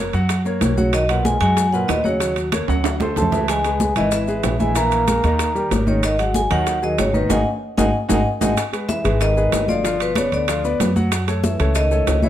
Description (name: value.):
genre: Afro-Cuban jazz.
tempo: 188 BPM.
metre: 4/4.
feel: straight.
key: G# minor.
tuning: A4 = 440 Hz.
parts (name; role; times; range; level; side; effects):
warm concert grand piano; accompaniment; 0.0-12.3 s; A#2 to F#5; -24 LUFS; left 1 dB; none.
upright bass; bass; 0.0-12.3 s; G1 to F#2; -22 LUFS; equal; none.
maracas; percussion; 0.1-12.3 s; none; -33 LUFS; left 10 dB; none.
timbales; percussion; 0.1-12.2 s; none; -27 LUFS; right 9 dB; none.
bongos; percussion; 0.3-12.3 s; none; -30 LUFS; left 7 dB; none.
congas; percussion; 0.3-12.3 s; none; -24 LUFS; equal; none.
vibraphone with medium hard mallets; melody; 0.8-12.3 s; B4 to A#5; -22 LUFS; left 1 dB; plate reverb.
breathy trombone; second line; 0.8-12.3 s; B2 to A#3; -27 LUFS; right 4 dB; none.
room: light reverb.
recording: close, detailed microphones.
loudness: -16 LUFS.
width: side -11 dB against mid.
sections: 0.0-8.6 A section; 8.6-12.3 B section.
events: drum fill 2.7-3.5, 7.6-8.6; band accent 7.3-8.6.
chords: 0.0 F#; 0.9 Bmaj7; 2.2 D#m7; 2.8 D9; 3.5 C#m7; 4.8 Emaj7#11/A#; 5.4 D#; 6.0 G#5; 8.6 G7b9b13; 9.8 G7; 11.1 F#m7.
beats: 0.29 0.61 | 0.93 1.25 1.57 1.89 | 2.21 2.53 2.85 3.16 | 3.48 3.80 4.12 4.44 | 4.76 5.08 5.39 5.71 | 6.03 6.35 6.67 6.99 | 7.30 7.62 7.94 8.26 | 8.58 8.89 9.21 9.53 | 9.85 10.16 10.48 10.80 | 11.12 11.44 11.75 12.07.